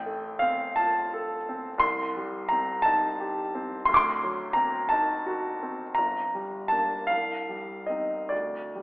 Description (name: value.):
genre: classical, romantic nocturne for solo piano.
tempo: 46-60 BPM (dotted quarters).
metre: 12/8.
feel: rubato.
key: unclear.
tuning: A4 = 439 Hz.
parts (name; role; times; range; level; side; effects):
warm grand piano; solo; 0.0-8.8 s; G1 to D6; -25 LUFS; equal; none.
room: wet scoring stage reverb, RT60 1.9 s.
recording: recorded in a church or concert hall, telephone sound.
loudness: -25 LUFS.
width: side -22 dB against mid.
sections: 0.0-8.8 A section.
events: none.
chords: 0.0 F/A; 1.8 Am7b5/C; 3.9 D7b9; 6.0 Gm; 7.1 Cm; 8.3 Dsus4.